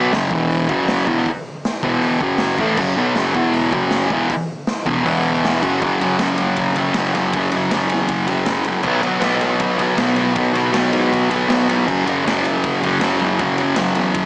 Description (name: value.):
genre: garage rock duo or trio.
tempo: 158 BPM.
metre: 4/4.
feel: straight.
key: unclear.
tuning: A4 = 440 Hz.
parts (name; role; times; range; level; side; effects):
thick fuzz guitar; riff; 0.0-14.3 s; E2 to B3; -16 LUFS; equal; distortion.
picked electric bass; bass; 0.0-14.3 s; E1 to G#2; -29 LUFS; equal; overdrive.
raw garage drum kit; drums; 0.1-14.2 s; crash cymbal, hi-hat, kick drum, ride cymbal, snare drum; -24 LUFS; equal; none.
room: moderate club reverb, RT60 0.6 s.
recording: small speaker sound.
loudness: -15 LUFS.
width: side -23 dB against mid.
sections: 0.0-5.8 A section; 5.8-14.3 B section.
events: none.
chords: 0.3 E5; 0.7 F#5; 1.8 E5; 2.2 F#5; 3.4 E5; 3.7 F#5; 5.1 E5; 5.6 F#5; 8.8 B5; 11.9 F#5.